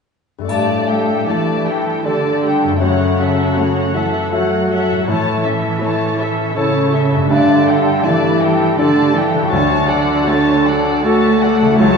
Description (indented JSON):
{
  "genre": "cinematic, emotional film score for orchestra",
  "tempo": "80 BPM",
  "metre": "3/4",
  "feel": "rubato",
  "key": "unclear",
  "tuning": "A4 = 439 Hz",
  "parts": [
    { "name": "concert harp", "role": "arpeggios", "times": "0.4-12.0 s", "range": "F#2 to C#6", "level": "-22 LUFS", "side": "left 3 dB", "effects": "none" },
    { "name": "mellow French horn", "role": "melody", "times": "0.5-12.0 s", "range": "A3 to A4", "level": "-21 LUFS", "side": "left 3 dB", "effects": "none" },
    { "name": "muted studio violin section", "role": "second line", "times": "0.5-12.0 s", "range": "G4 to A5", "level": "-20 LUFS", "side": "left 3 dB", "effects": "none" },
    { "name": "bright concert grand piano", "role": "accompaniment", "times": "0.5-12.0 s", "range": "C#2 to E5", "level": "-20 LUFS", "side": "equal", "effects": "none" },
    { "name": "muted studio viola section", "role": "accompaniment", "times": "0.5-12.0 s", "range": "F#3 to A4", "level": "-22 LUFS", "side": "right 2 dB", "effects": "none" },
    { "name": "muted studio cello section", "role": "bass", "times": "0.5-12.0 s", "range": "A2 to A3", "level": "-18 LUFS", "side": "right 2 dB", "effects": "none" },
    { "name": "triangle", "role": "percussion", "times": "0.5-2.0 s", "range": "none", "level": "-40 LUFS", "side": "left 2 dB", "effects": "none" }
  ],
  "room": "wet recital hall reverb, RT60 1.4 s",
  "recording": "recorded in a church or concert hall, nothing above 10.4 kHz",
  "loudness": "-13 LUFS",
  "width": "side -5 dB against mid",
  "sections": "0.5-12.0 A section",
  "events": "none",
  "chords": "0.5 Gsus2; 2.8 F#m7; 5.1 A; 7.3 Gsus2; 9.5 Dmaj7"
}